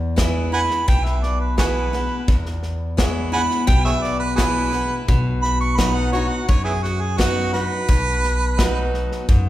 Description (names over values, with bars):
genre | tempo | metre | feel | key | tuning
honky-tonk and classic country | 86 BPM | 4/4 | straight | E major | A4 = 440 Hz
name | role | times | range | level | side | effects
picked steel-string acoustic guitar | accompaniment | 0.0-9.5 s | E2 to F#4 | -25 LUFS | left 3 dB | none
upright bass | bass | 0.0-9.5 s | B1 to F#2 | -24 LUFS | equal | none
clear concert grand piano | accompaniment | 0.2-9.2 s | D#4 to C#5 | -30 LUFS | right 6 dB | none
natural country drum kit | drums | 0.2-9.4 s | hi-hat, kick drum, snare drum | -21 LUFS | equal | none
warm harmonica | second line | 0.5-8.9 s | B3 to C#6 | -23 LUFS | right 3 dB | none
room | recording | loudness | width
wet recital hall reverb, RT60 1.6 s | recorded in a church or concert hall | -17 LUFS | side -14 dB against mid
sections
0.0-9.5 A section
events
harmonica solo 0.0-9.5; grand piano fill 9.3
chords
0.0 E; 5.1 B